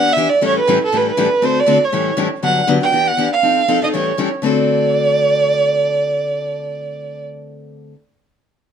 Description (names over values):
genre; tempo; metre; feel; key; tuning
jazz; 240 BPM; 4/4; swing 56% on 8ths; D mixolydian; A4 = 437 Hz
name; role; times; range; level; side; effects
warm violin; melody; 0.0-7.2 s; A4 to G5; -16 LUFS; right 3 dB; plate reverb
picked steel-string acoustic guitar; accompaniment; 0.0-8.0 s; G2 to A4; -19 LUFS; left 5 dB; none
room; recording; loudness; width
moderate studio reverb, RT60 0.6 s; dark, warm production; -13 LUFS; side -8 dB against mid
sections
0.0-2.4 A section; 2.4-4.4 B section; 4.4-6.4 C section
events
none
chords
0.4 A7; 1.4 D7; 1.9 A7; 2.4 Gmaj7; 2.9 Em7; 3.4 F7; 3.9 A7; 4.4 D7